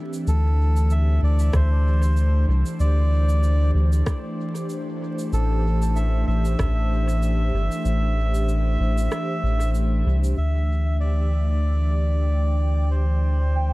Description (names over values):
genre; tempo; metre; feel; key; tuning
ambient dub; 95 BPM; 4/4; swing 55% on 16ths; unclear; A4 = 441 Hz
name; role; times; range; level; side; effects
airy breathy pad; sustained chords; 0.0-13.7 s; E3 to C5; -29 LUFS; equal; chorus
electronic cabasa and rim click; drums; 0.1-10.4 s; none; -37 LUFS; right 1 dB; dub echo
melodica; melody; 0.3-13.7 s; A4 to E5; -31 LUFS; right 2 dB; dub echo
soft dub sub bass; bass; 0.3-13.7 s; G1 to D2; -19 LUFS; equal; none
electronic kick drum; drums; 1.5-6.7 s; none; -24 LUFS; equal; none
bubbling stepped-filter texture; texture; 10.4-13.7 s; G5; -37 LUFS; right 5 dB; chorus, built-in reverb
room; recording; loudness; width
little or no reverb; dark, warm production, vinyl crackle; -19 LUFS; side -20 dB against mid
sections
0.0-10.4 A section; 10.4-13.7 B section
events
kick drops out 9.1-10.4; filter sweep on analog synth pad 10.4-13.7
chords
0.3 D7sus4; 5.3 Am7; 10.4 D7sus4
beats
| 0.27 0.91 1.54 2.17 | 2.80 3.43 4.06 4.70 | 5.33 5.96 6.59 7.22 | 7.85 8.48 9.12 9.75 | 10.38 11.01 11.64 12.27 | 12.91 13.54